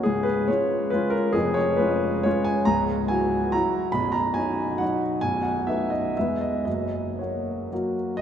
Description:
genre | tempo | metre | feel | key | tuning
classical, romantic triple-time dance for piano with dotted rhythms | 109-150 BPM | 3/4 | rubato | unclear | A4 = 438 Hz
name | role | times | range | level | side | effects
warm grand piano | solo | 0.0-8.2 s | B0 to B5 | -22 LUFS | equal | none
room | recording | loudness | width
wet cathedral reverb, RT60 5.3 s | in a vast, echoing space | -22 LUFS | side -9 dB against mid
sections
0.0-8.2 A section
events
none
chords
0.0 C#; 1.4 C#/E#; 2.7 F#7/C#; 3.9 B; 5.2 B7; 6.2 E; 6.7 F#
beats
| 0.05 0.48 0.93 | 1.36 1.80 2.26 | 2.68 3.10 3.53 | 3.94 4.38 4.82 | 5.24 5.67 6.16 | 6.66 7.20 7.71 | 8.19

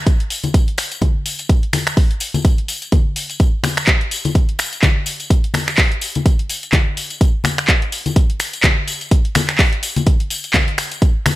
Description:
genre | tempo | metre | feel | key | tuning
house | 126 BPM | 4/4 | swing 57% on 16ths | none | none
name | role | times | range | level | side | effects
electronic kick drum | drums | 0.1-11.1 s | none | -14 LUFS | equal | none
punchy analog drum machine | drums | 0.1-11.4 s | finger snaps, handclaps, hi-hat | -19 LUFS | equal | none
tambourine and congas | percussion | 0.1-11.4 s | none | -22 LUFS | left 3 dB | none
room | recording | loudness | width
digital ambience | none | -14 LUFS | side -16 dB against mid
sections
0.0-11.4 A section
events
none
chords
none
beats
0.07 0.54 1.02 | 1.50 1.97 2.45 2.92 | 3.40 3.88 4.35 4.83 | 5.30 5.78 6.26 6.73 | 7.21 7.69 8.16 8.64 | 9.11 9.59 10.07 10.54 | 11.02

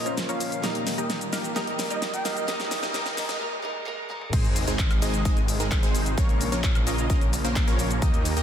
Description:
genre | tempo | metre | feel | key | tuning
EDM, festival progressive house | 130 BPM | 4/4 | straight | Ab major | A4 = 440 Hz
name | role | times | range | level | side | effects
breathy flute-like synth lead | melody | 0.0-3.4 s | Eb5 to G5 | -34 LUFS | right 2 dB | chorus, ping-pong delay
picked old ladder-braced acoustic guitar | accompaniment | 0.0-4.3 s | F3 to Bb4 | -34 LUFS | right 2 dB | sidechain pumping, ping-pong delay
supersaw pad | sustained chords | 0.0-8.4 s | Db2 to G4 | -35 LUFS | equal | sidechain pumping
riser, swell and sub drop | sound effects | 0.5-6.2 s | none | -38 LUFS | equal | none
supersaw stab | riff | 0.1-8.4 s | Ab3 to F5 | -29 LUFS | equal | sidechain pumping, low-pass filter, ping-pong delay
big-room dance drum kit | drums | 0.1-8.4 s | crash cymbal, handclaps, hi-hat, shaker, snare drum, toms, woodblock | -31 LUFS | left 1 dB | none
wide detuned saw bass | bass | 4.3-8.4 s | Ab1 to Eb2 | -28 LUFS | equal | chorus, sidechain pumping
electronic kick drum | drums | 4.3-8.1 s | none | -23 LUFS | equal | none
room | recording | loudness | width
moderate scoring stage reverb, RT60 1.6 s | dense, heavily limited modern master, high-pass filter | -23 LUFS | side -9 dB against mid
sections
0.0-4.3 A section; 4.3-8.4 B section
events
build-up 0.0-4.3; drum fill 0.0-3.4, 4.1; filter sweep on supersaw synth 0.0-4.3; break 3.4-4.3; swell 3.4-4.3; drop 4.3-8.4; impact 4.3-6.2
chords
0.0 Bbm; 0.6 Eb; 2.5 Dbm; 4.3 Ab; 6.2 Bbm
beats
0.17 | 0.64 1.10 1.56 2.02 | 2.48 2.94 3.41 3.87 | 4.33 4.79 5.25 5.71 | 6.17 6.64 7.10 7.56 | 8.02

